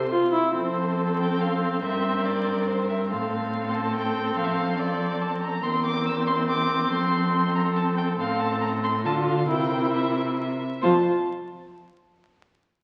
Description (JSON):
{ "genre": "quick classical-period movement for string quartet", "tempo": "141 BPM", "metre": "3/4", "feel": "straight", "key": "F major", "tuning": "A4 = 440 Hz", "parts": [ { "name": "rich violin", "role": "melody", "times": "0.0-11.1 s", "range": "C5 to E6", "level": "-33 LUFS", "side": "equal", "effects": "none" }, { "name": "warm violin", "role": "second line", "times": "0.0-11.1 s", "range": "A4 to C5", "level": "-34 LUFS", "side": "equal", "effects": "none" }, { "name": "warm cello", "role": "bass", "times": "0.0-11.1 s", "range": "E2 to D3", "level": "-30 LUFS", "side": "equal", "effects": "none" }, { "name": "warm viola", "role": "accompaniment", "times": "0.1-11.1 s", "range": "C4 to F4", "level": "-28 LUFS", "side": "equal", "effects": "none" } ], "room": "wet scoring stage reverb, RT60 1.5 s", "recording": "very old 78 rpm record, vinyl crackle", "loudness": "-25 LUFS", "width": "mono", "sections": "0.5-10.8 A section; 10.8-12.2 B section", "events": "none", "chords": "0.0 C; 0.5 F; 1.8 C7/G; 3.1 F/A; 4.4 F; 5.6 C7/E; 6.9 F; 8.2 Am; 9.0 Dm; 9.5 C7; 10.8 F5" }